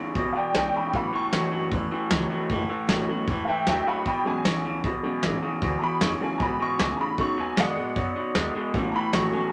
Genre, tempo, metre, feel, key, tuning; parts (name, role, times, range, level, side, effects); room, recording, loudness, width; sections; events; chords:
rockabilly; 154 BPM; 4/4; straight; E mixolydian; A4 = 441 Hz
picked steel-string acoustic guitar; accompaniment; 0.0-9.5 s; E2 to F#4; -36 LUFS; equal
electric guitar through a small old amp; riff; 0.0-9.5 s; E2 to G#3; -30 LUFS; equal
upright bass; bass; 0.2-9.4 s; E1 to A2; -38 LUFS; equal
soft brush drum kit; drums; 0.2-9.2 s; hi-hat, kick drum, snare drum; -29 LUFS; equal
honky-tonk upright piano; accompaniment; 0.3-9.5 s; D#3 to C#6; -31 LUFS; equal
moderate studio ambience, RT60 0.5 s; -26 LUFS; mono
0.0-9.5 A section
honky-tonk piano solo 0.0-9.5
0.0 E6; 0.9 A6; 4.1 E6; 7.2 B6; 8.7 A6